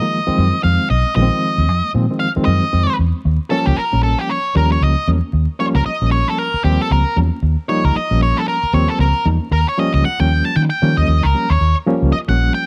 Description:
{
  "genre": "funk",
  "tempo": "115 BPM",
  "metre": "4/4",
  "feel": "swing 60% on 16ths",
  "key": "Eb mixolydian",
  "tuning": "A4 = 440 Hz",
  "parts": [
    { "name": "octave-fuzz lead guitar", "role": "melody", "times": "0.0-12.7 s", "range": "G4 to A5", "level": "-22 LUFS", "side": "equal", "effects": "distortion" },
    { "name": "barky reed electric piano", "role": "stabs", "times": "0.0-12.7 s", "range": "Eb3 to Eb4", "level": "-22 LUFS", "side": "equal", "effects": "overdrive, medium tremolo" },
    { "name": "vintage muted fingered electric bass", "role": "bass", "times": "0.3-12.5 s", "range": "Bb1 to Eb3", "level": "-18 LUFS", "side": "equal", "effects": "none" }
  ],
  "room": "little or no reverb",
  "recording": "vinyl crackle",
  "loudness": "-16 LUFS",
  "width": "mono",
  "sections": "0.0-3.3 A section; 3.3-12.7 B section",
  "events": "lead electric guitar solo 3.3-12.7",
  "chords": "0.0 Bb9sus4; 3.3 Eb9",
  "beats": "0.12 0.64 | 1.16 1.69 2.21 2.73 | 3.25 3.77 4.29 4.82 | 5.34 5.86 6.38 6.91 | 7.43 7.95 8.47 9.00 | 9.52 10.04 10.56 11.09 | 11.61 12.13 12.65"
}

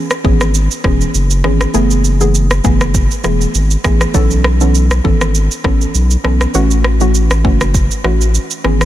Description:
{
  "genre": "afrobeats",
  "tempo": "100 BPM",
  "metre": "4/4",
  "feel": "swing 55% on 16ths",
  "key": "unclear",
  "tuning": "A4 = 440 Hz",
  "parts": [
    { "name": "afro-pop drum kit", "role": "drums", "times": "0.1-8.9 s", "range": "kick drum, rim click, shaker", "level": "-16 LUFS", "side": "equal", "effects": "none" },
    { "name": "soft round pluck", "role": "accompaniment", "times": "0.2-8.9 s", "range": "E3 to A4", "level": "-17 LUFS", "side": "equal", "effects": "chorus" },
    { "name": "saturated sub bass", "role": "bass", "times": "0.2-8.9 s", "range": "E1 to B1", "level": "-13 LUFS", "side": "equal", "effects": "none" }
  ],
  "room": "little or no reverb",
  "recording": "dense, heavily limited modern master",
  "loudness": "-10 LUFS",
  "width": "side -13 dB against mid",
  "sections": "0.0-8.9 A section",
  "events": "none",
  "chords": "0.0 E6/G#; 1.7 F#m11; 4.1 B9sus4; 6.5 A6",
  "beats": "0.55 1.15 | 1.75 2.35 2.94 3.54 | 4.14 4.75 5.34 5.95 | 6.54 7.14 7.75 8.35"
}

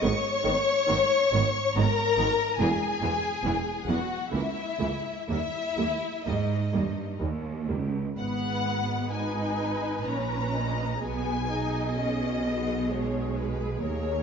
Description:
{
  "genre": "classical, slow romantic movement for string orchestra",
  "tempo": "61-72 BPM",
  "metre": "3/4",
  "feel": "rubato",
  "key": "G# minor",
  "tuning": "A4 = 440 Hz",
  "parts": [
    { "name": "warm symphonic violin section", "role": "melody", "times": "0.0-14.2 s", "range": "C#5 to C#6", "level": "-32 LUFS", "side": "left 3 dB", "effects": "none" },
    { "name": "warm symphonic violin section", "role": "second line", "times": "0.0-14.2 s", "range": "D#4 to D#5", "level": "-30 LUFS", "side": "left 5 dB", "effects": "none" },
    { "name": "warm symphonic viola section", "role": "accompaniment", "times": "0.0-14.2 s", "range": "D#3 to B4", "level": "-33 LUFS", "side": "right 1 dB", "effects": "none" },
    { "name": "rich symphonic cello section", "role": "bass", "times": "0.0-14.2 s", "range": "C#2 to B2", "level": "-32 LUFS", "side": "right 4 dB", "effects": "none" },
    { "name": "rich symphonic double bass section", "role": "bass", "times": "0.0-14.2 s", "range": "E1 to D#2", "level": "-33 LUFS", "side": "right 4 dB", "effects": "none" }
  ],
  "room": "moderate scoring stage reverb, RT60 1.9 s",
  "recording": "nothing above 7.6 kHz",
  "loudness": "-25 LUFS",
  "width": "side -6 dB against mid",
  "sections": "0.0-8.2 A section; 8.2-14.2 B section",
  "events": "none",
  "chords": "0.0 G#m; 2.6 E; 4.3 A#dim; 5.3 D#; 8.2 G#m; 11.0 G#m/B",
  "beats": "| 0.03 0.90 1.77 | 2.61 3.46 4.34 | 5.30 6.27 7.21 | 8.18 9.13 10.07 | 11.03 11.98 12.92 | 13.82"
}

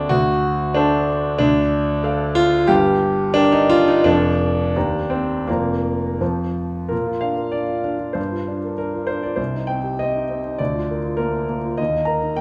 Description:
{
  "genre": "classical, romantic character piece for solo piano",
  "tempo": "80-101 BPM",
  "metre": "2/4",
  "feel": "rubato",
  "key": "Bb major",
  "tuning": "A4 = 438 Hz",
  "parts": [
    { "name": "warm grand piano", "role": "solo", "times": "0.0-12.4 s", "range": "F1 to Bb5", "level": "-20 LUFS", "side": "equal", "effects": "none" }
  ],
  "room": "moderate recital hall reverb, RT60 1.4 s",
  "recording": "none",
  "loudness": "-20 LUFS",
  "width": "mono",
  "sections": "0.0-6.9 A section; 6.9-12.4 B section",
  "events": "none",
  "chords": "0.1 D7; 1.4 Dm; 2.7 Gm; 4.1 Dm/F; 4.8 Cm7/Eb; 5.5 Bb/F; 6.2 F; 6.9 Bb; 8.2 Gm7; 9.4 Cm; 10.6 Bb/D; 11.8 Eb5",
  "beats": "| 0.09 0.75 | 1.39 2.04 | 2.69 3.36 | 4.05 4.75 | 5.47 6.20 | 6.92 7.55 | 8.18 8.79 | 9.39 9.99 | 10.60 11.19 | 11.79 12.39"
}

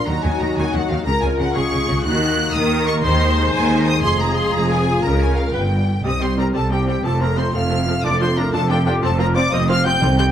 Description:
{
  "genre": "cinematic, heroic adventure film score",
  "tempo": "121 BPM (dotted quarters)",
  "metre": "6/8",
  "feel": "straight",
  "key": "Eb dorian",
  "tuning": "A4 = 440 Hz",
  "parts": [
    { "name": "rich symphonic violin section", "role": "melody", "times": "0.0-10.2 s", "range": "F5 to G6", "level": "-25 LUFS", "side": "left 2 dB", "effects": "none" },
    { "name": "dark symphonic violin section", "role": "second line", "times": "0.0-10.2 s", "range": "C4 to Gb6", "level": "-26 LUFS", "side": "left 1 dB", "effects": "none" },
    { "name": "clear symphonic viola section", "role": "accompaniment", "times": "0.0-10.2 s", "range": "F3 to C5", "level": "-24 LUFS", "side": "equal", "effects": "none" },
    { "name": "warm French horn section", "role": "sustained chords", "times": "0.0-5.9 s", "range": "Gb3 to F4", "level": "-24 LUFS", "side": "left 5 dB", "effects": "none" },
    { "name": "rich symphonic cello section", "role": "bass", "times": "0.1-10.3 s", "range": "C2 to Eb3", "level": "-23 LUFS", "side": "equal", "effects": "none" },
    { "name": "warm symphonic double bass section", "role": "bass", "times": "0.1-10.3 s", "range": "F1 to Eb2", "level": "-21 LUFS", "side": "right 1 dB", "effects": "none" },
    { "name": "warm trombone section", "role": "sustained chords", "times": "6.0-10.3 s", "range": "Eb3 to C4", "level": "-26 LUFS", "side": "right 4 dB", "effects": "none" },
    { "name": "mellow trumpet section", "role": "stabs", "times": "6.0-10.3 s", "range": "G4 to G5", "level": "-23 LUFS", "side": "left 1 dB", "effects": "none" },
    { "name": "timpani", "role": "percussion", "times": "10.0-10.3 s", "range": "C3", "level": "-18 LUFS", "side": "equal", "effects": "none" }
  ],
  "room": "light reverb",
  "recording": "none",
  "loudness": "-16 LUFS",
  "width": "side -10 dB against mid",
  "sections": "0.0-6.0 A section; 6.0-10.3 B section",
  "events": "none",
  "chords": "0.1 Ebm; 1.1 Db; 2.0 Ebm; 3.0 Ab/Eb; 4.0 Fm; 5.0 Db6; 5.5 G7; 6.0 C5; 7.0 F; 8.0 Dm/F; 9.0 F5",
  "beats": "| 0.07 0.57 | 1.06 1.55 | 2.05 2.54 | 3.04 3.53 | 4.03 4.52 | 5.02 5.53 | 6.04 6.54 | 7.04 7.54 | 8.04 8.54 | 9.03 9.53 | 10.02"
}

